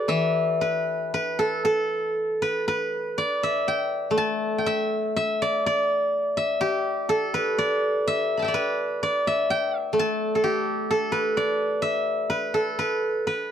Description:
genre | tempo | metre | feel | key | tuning
chinese traditional, Chinese solo plucked strings | 57-65 BPM | 4/4 | rubato | E yu mode | A4 = 435 Hz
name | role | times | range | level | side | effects
steel-string zither | solo | 0.0-13.5 s | E3 to B5 | -22 LUFS | equal | none
room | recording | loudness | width
light reverb | dry, close 1970s-style studio recording | -22 LUFS | side -9 dB against mid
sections
0.1-13.5 A section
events
none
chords
none

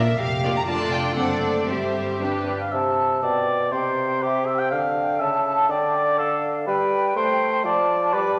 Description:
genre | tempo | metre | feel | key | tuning
quick classical-period movement for symphony orchestra | 122 BPM | 2/4 | rubato | C major | A4 = 439 Hz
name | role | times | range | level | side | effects
rich studio violin section | melody | 0.0-2.2 s | D5 to Bb5 | -30 LUFS | equal | none
rich studio violin section | second line | 0.0-2.5 s | D4 to D5 | -31 LUFS | equal | none
rich studio viola section | accompaniment | 0.0-2.5 s | G3 to D4 | -29 LUFS | equal | none
dark studio double bass section | bass | 0.0-2.5 s | F1 to Bb1 | -31 LUFS | equal | none
warm studio cello section | bass | 0.0-2.4 s | F4 to Bb4 | -32 LUFS | equal | none
warm cor anglais | second line | 2.5-8.4 s | G4 to G5 | -25 LUFS | equal | none
flute section | second line | 2.7-8.4 s | E5 to D6 | -29 LUFS | equal | none
warm bassoon | accompaniment | 2.7-8.4 s | B2 to A3 | -27 LUFS | equal | none
room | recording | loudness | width
wet recital hall reverb, RT60 1.6 s | none | -22 LUFS | mono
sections
0.0-2.7 A section; 2.7-8.4 B section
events
none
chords
0.0 Bb5; 0.7 Dm/F; 1.2 D7/F#; 1.7 C/G; 2.2 G; 2.7 C; 3.2 G/B; 3.7 C; 4.7 Dm; 5.2 A/C#; 5.7 Dm; 6.7 N.C.; 7.2 Am7; 7.7 Dm/F

